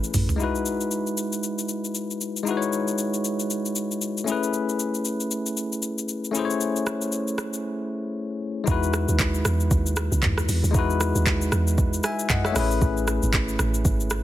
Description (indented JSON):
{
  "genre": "amapiano",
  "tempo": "116 BPM",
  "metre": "4/4",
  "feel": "swing 58% on 16ths",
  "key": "E major",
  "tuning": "A4 = 439 Hz",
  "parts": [
    { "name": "barky tine electric piano", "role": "accompaniment", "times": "0.0-14.2 s", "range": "G#3 to G#5", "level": "-26 LUFS", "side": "moving between left 6 dB and right 2 dB", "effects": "auto-pan" },
    { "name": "deep log drum bass", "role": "bass", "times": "0.0-0.3, 8.7-14.2 s", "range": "G#1 to E2", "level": "-24 LUFS", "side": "right 1 dB", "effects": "none" },
    { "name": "smooth R&B drum kit", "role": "drums", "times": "0.0-14.2 s", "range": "handclaps, hi-hat, kick drum, rim click, shaker, toms", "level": "-26 LUFS", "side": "equal", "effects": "none" }
  ],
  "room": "little or no reverb",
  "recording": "dense, heavily limited modern master",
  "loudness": "-22 LUFS",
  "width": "side -13 dB against mid",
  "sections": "0.4-8.7 A section; 8.7-14.2 B section",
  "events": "drum fill 0.0-0.4; break 7.6-8.7; drop 8.7-14.2",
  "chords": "0.4 Emaj9; 4.3 Amaj9; 8.7 Emaj9; 12.6 Amaj9",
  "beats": "| 0.40 0.92 1.44 1.95 | 2.47 2.99 3.50 4.02 | 4.54 5.06 5.57 6.09 | 6.61 7.12 7.64 8.16 | 8.68 9.19 9.71 10.23 | 10.74 11.26 11.78 12.30 | 12.81 13.33 13.85"
}